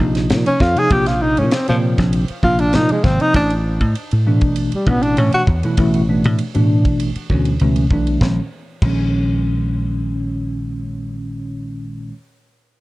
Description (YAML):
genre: electric jazz fusion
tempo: 98 BPM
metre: 4/4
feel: straight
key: unclear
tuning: A4 = 439 Hz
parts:
  - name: bell-like tine electric piano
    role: accompaniment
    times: 0.0-12.1 s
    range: Bb2 to F4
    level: -20 LUFS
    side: equal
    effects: medium stereo tremolo, analog chorus
  - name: dry thumbed slap bass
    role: bass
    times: 0.0-12.1 s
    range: Ab1 to Bb2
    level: -18 LUFS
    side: equal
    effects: none
  - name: tight funk drum kit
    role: drums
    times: 0.1-9.0 s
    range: crash cymbal, kick drum, ride cymbal, snare drum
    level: -22 LUFS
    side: equal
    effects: none
  - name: warm tenor saxophone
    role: melody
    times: 0.5-5.4 s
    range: F3 to Ab4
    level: -19 LUFS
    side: equal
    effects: none
room: light reverb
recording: cassette tape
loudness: -14 LUFS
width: side -19 dB against mid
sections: 0.0-8.2 A section; 8.2-10.6 B section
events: tenor saxophone solo 0.0-8.2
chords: 0.0 Bbsus4; 3.3 Asus24; 8.2 Bbm